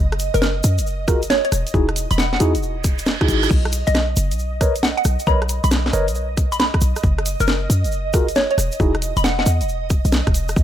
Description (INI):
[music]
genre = UK garage, two-step garage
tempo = 136 BPM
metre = 4/4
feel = swing 66% on 16ths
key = unclear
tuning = A4 = 441 Hz
[part]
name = ethereal airy pad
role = sustained chords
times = 0.0-10.6 s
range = D#5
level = -30 LUFS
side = right 5 dB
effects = ensemble chorus, built-in reverb, sidechain pumping
[part]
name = short 808-style bass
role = bass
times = 0.0-10.6 s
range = E1 to F#2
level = -21 LUFS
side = equal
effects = sidechain pumping
[part]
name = garage drum kit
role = drums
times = 0.1-10.6 s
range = crash cymbal, hi-hat, rim click, snare drum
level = -22 LUFS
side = equal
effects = none
[part]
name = tube shaker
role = percussion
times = 0.2-10.6 s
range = none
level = -31 LUFS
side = equal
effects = none
[part]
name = hollow square pluck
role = melody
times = 0.3-9.4 s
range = A#4 to B5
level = -22 LUFS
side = equal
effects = wide subtle chorus, digital delay
[part]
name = mellow tine electric piano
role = stabs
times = 1.1-8.9 s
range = D#4 to D#5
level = -23 LUFS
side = equal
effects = fast stereo tremolo, digital delay
[part]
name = electronic kick drum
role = drums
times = 1.1-10.6 s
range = none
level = -18 LUFS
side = equal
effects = none
[part]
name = reverse cymbal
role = sound effects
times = 2.8-3.5 s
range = none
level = -26 LUFS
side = right 8 dB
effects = none
[sound]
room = little or no reverb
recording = none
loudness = -16 LUFS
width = side -11 dB against mid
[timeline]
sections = 0.0-10.6 A section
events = reverse cymbal 2.8-3.5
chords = 0.0 N.C.; 1.5 Emaj9; 3.5 B; 7.0 N.C.; 8.6 Emaj7(no3)